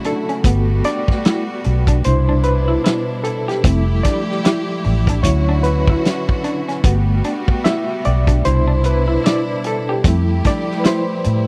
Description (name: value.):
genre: R&B, neo-soul.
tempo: 75 BPM.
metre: 4/4.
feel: swing 60% on 16ths.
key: G major.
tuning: A4 = 441 Hz.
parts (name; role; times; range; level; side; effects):
overdriven reed electric piano; accompaniment; 0.0-11.5 s; B2 to E5; -24 LUFS; equal; fast tremolo.
rich studio string section; sustained chords; 0.0-11.5 s; B2 to G4; -27 LUFS; equal; none.
warm soul drum kit; drums; 0.0-11.5 s; hi-hat, kick drum, snare drum; -19 LUFS; equal; none.
electric guitar through a small old amp; second line; 0.1-11.3 s; B3 to G4; -25 LUFS; equal; none.
vintage muted fingered electric bass; bass; 0.5-11.5 s; F1 to A2; -18 LUFS; equal; none.
room: little or no reverb.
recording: dry, close 1970s-style studio recording.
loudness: -17 LUFS.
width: mono.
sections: 0.0-11.5 A section.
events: reed electric piano solo 0.0-11.5.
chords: 0.4 Gmaj9; 2.0 Cmaj9; 3.6 Fmaj9; 5.2 Dmaj9; 6.8 Gmaj9; 8.4 Cmaj9; 10.0 Fmaj9.